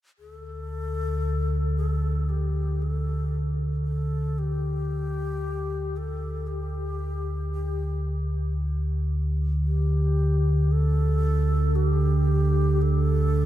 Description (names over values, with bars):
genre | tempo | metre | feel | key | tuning
dark ambient drone | 57 BPM | 4/4 | straight | unclear | A4 = 440 Hz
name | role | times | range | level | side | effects
breathy hollow long shakuhachi | melody | 0.2-13.5 s | G4 to A4 | -33 LUFS | left 3 dB | diffuse ambient delay
deep rumbling drone | drone | 0.4-13.5 s | D2 to D3 | -23 LUFS | equal | built-in reverb
room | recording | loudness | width
wet cathedral reverb, RT60 5.5 s | in a vast, echoing space | -23 LUFS | side -13 dB against mid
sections
0.2-13.5 A section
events
fade-in on shakuhachi 0.2-13.5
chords
none